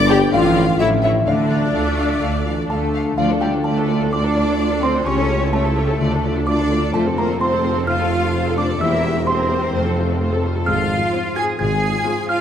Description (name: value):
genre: cinematic, playful, whimsical film cue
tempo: 128 BPM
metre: 4/4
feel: straight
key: D minor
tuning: A4 = 439 Hz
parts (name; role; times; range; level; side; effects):
- music box; melody; 0.0-12.4 s; D5 to Ab6; -25 LUFS; right 1 dB; none
- rich studio violin section; second line; 0.0-12.4 s; F4 to Ab5; -26 LUFS; left 3 dB; none
- rich studio viola section; accompaniment; 0.0-12.4 s; A3 to A4; -24 LUFS; equal; none
- concert harp; arpeggios; 0.0-12.4 s; E2 to D6; -24 LUFS; left 7 dB; none
- mellow tuba; bass; 0.0-12.0 s; E1 to D2; -24 LUFS; right 3 dB; none
- rich studio cello section; bass; 0.0-12.4 s; G2 to Ab4; -24 LUFS; right 2 dB; none
- rich studio double bass section; bass; 0.0-12.0 s; G1 to F2; -24 LUFS; right 2 dB; none
- rich studio violin section; melody; 0.1-12.4 s; A4 to F5; -30 LUFS; left 4 dB; none
room: wet concert hall reverb, RT60 2.2 s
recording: none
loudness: -16 LUFS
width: side -9 dB against mid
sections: 0.0-3.2 A section; 3.2-12.4 B section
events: none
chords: 0.3 Dm/A; 0.8 A5; 1.3 Dm; 5.1 A7/C#; 6.0 Dm; 6.9 F; 8.8 C7/E; 9.7 F; 10.7 Fm/Ab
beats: 0.33 0.80 | 1.27 1.75 2.22 2.70 | 3.17 3.65 4.12 4.59 | 5.06 5.53 6.00 6.47 | 6.93 7.40 7.87 8.34 | 8.81 9.27 9.73 10.20 | 10.66 11.13 11.59 12.06